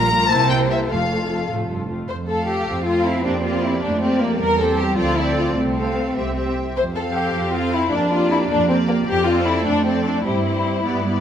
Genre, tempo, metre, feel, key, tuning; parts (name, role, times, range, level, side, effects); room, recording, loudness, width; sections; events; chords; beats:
quick classical-period movement for string orchestra; 103 BPM (dotted quarters); 6/8; straight; F major; A4 = 440 Hz
warm symphonic violin section; melody; 0.0-11.2 s; C5 to Bb5; -25 LUFS; left 3 dB
rich studio violin section; second line; 0.0-11.2 s; Bb3 to C5; -21 LUFS; left 2 dB
warm chamber viola section; accompaniment; 0.0-11.2 s; G3 to A4; -26 LUFS; right 1 dB
rich symphonic cello section; bass; 0.0-11.2 s; F2 to D4; -25 LUFS; right 3 dB
rich symphonic double bass section; bass; 0.0-11.2 s; F1 to G2; -26 LUFS; right 2 dB
moderate recital hall reverb, RT60 1.8 s; -17 LUFS; side -9 dB against mid
0.0-2.1 A section; 2.1-11.2 B section
0.3 C7; 0.9 F; 3.2 Gm7/F; 4.4 C/E; 5.0 Dm7; 5.6 F/C; 6.2 C; 6.8 F; 7.9 Gm7/F; 9.1 Dm7/F; 10.3 C/G
0.31 | 0.90 1.49 | 2.09 2.67 | 3.25 3.83 | 4.40 4.98 | 5.57 6.16 | 6.76 7.34 | 7.92 8.50 | 9.08 9.66 | 10.25 10.85